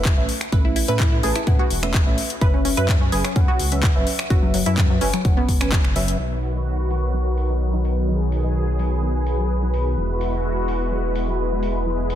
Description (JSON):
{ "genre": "progressive house", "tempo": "127 BPM", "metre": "4/4", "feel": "straight", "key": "B mixolydian", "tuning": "A4 = 441 Hz", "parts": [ { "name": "wide unison pluck", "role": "arpeggios", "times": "0.0-6.1 s", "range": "F#3 to B4", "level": "-26 LUFS", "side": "left 1 dB", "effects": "sidechain pumping, dub echo" }, { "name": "deep mellow chord stab", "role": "stabs", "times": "0.0-12.2 s", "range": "F#3 to A5", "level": "-28 LUFS", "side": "right 1 dB", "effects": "chorus, sidechain pumping, dub echo" }, { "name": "dark detuned saw bass", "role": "bass", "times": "0.0-12.2 s", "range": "E1 to A2", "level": "-23 LUFS", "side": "equal", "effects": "sidechain pumping" }, { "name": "electronic kick drum", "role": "drums", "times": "0.1-5.8 s", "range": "none", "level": "-18 LUFS", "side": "equal", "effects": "studio reverb" }, { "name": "house drum kit", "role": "drums", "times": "0.1-12.2 s", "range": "finger snaps, handclaps, hi-hat", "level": "-27 LUFS", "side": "left 2 dB", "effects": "overdrive, low-pass filter on hats, studio reverb, low-pass filter on snare" }, { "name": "filtered supersaw swell", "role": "sustained chords", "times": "6.2-12.2 s", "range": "D#3 to B4", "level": "-24 LUFS", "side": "equal", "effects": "phaser, sidechain pumping, low-pass filter" } ], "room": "light reverb", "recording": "dense, heavily limited modern master", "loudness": "-18 LUFS", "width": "side -11 dB against mid", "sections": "0.0-6.2 A section; 6.2-12.2 B section", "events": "filter sweep on drum 6.2-12.2; filter sweep on synth stab 6.2-12.2; filter sweep on supersaw synth 6.2-12.2", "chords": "0.0 Aadd9; 2.4 F#7sus4; 6.2 B; 10.0 Eadd9" }